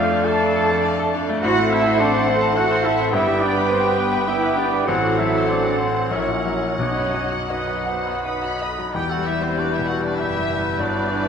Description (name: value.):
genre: classical.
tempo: 76-107 BPM.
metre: 3/4.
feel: rubato.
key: E minor.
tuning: A4 = 438 Hz.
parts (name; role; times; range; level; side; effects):
clear concert grand piano; melody; 0.0-11.3 s; A1 to D#6; -23 LUFS; left 3 dB; none.
muted symphonic violin section; melody; 0.0-11.3 s; C5 to B5; -31 LUFS; left 4 dB; none.
bright clarinet; second line; 0.0-11.3 s; C4 to B4; -30 LUFS; left 1 dB; none.
muted symphonic violin section; second line; 0.0-11.3 s; G3 to F#6; -32 LUFS; left 3 dB; none.
silver concert flute; second line; 0.0-11.3 s; F5 to G6; -30 LUFS; left 2 dB; none.
warm oboe; second line; 0.0-11.3 s; E4 to E5; -31 LUFS; right 2 dB; none.
mellow bassoon; accompaniment; 0.0-11.3 s; E3 to B3; -30 LUFS; right 3 dB; none.
muted symphonic viola section; accompaniment; 0.0-11.3 s; C4 to D#5; -31 LUFS; right 3 dB; none.
warm French horn section; sustained chords; 0.0-11.3 s; E3 to E4; -30 LUFS; left 2 dB; none.
warm trumpet section; stabs; 0.0-11.3 s; B4 to A5; -26 LUFS; right 2 dB; none.
muted symphonic cello section; bass; 0.0-11.3 s; E2 to A4; -27 LUFS; right 3 dB; none.
muted symphonic double bass section; bass; 0.0-11.3 s; E1 to F2; -32 LUFS; right 6 dB; none.
timpani; percussion; 6.8-7.8 s; B2; -31 LUFS; left 3 dB; none.
room: wet scoring stage reverb, RT60 1.7 s.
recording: nothing above 10.3 kHz.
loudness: -18 LUFS.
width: side -7 dB against mid.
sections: 0.0-9.0 A section; 9.0-11.3 B section.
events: none.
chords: 0.0 Dm/F; 1.4 F#dim/A; 3.1 Em/G; 4.9 F#dim/A; 6.1 F#7/A#; 6.8 B; 9.0 Em.